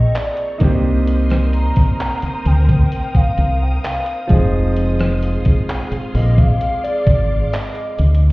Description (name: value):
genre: contemporary R&B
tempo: 65 BPM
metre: 4/4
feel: straight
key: unclear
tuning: A4 = 440 Hz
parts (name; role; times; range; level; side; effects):
- hollow clarinet-like synth lead; melody; 0.0-8.2 s; D5 to Bb5; -24 LUFS; equal; chorus, tape echo
- clear grand piano; accompaniment; 0.0-8.3 s; F3 to Ab4; -24 LUFS; right 2 dB; none
- bright studio string section; sustained chords; 0.0-8.3 s; C4 to Eb6; -31 LUFS; equal; none
- deep dub fingered electric bass; bass; 0.0-8.3 s; F1 to D2; -14 LUFS; equal; none
- gated 80s digital drum machine; drums; 0.1-8.3 s; handclaps, hi-hat, kick drum, rim click; -16 LUFS; equal; gated reverb
room: little or no reverb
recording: heard muffled through a wall, stone room reverb, EQ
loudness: -14 LUFS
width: side -21 dB against mid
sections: 0.0-8.3 A section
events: none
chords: 0.0 Bbm9; 0.6 Cm9; 4.3 Fm7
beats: 0.15 | 1.07 1.99 2.92 3.84 | 4.76 5.69 6.61 7.53